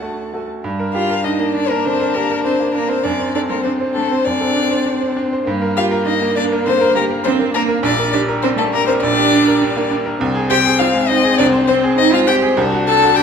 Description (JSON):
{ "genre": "quick classical-period movement for piano quartet", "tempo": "101 BPM", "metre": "4/4", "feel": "straight", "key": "G minor", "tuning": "A4 = 440 Hz", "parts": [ { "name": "warm violin", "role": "melody", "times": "0.0-13.2 s", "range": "A4 to A5", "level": "-18 LUFS", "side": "left 6 dB", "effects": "none" }, { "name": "rich cello", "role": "second line", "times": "0.0-13.2 s", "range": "A3 to A4", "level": "-20 LUFS", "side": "right 6 dB", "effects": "none" }, { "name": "warm violin", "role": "second line", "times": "0.0-13.2 s", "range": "G3 to F#5", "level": "-21 LUFS", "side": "left 3 dB", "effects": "none" }, { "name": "bright baby grand piano", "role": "accompaniment", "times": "0.0-13.2 s", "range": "Bb1 to C5", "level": "-19 LUFS", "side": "right 1 dB", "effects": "none" } ], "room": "wet recital hall reverb, RT60 1.5 s", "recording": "minimal, uncompressed stereo recording", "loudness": "-14 LUFS", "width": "side -6 dB against mid", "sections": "0.6-13.2 A section", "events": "none", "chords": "0.0 D; 0.6 Gm; 3.1 D7/F#; 5.5 Gm; 7.8 Gm/Bb; 10.2 Ab/C; 12.6 D7/C" }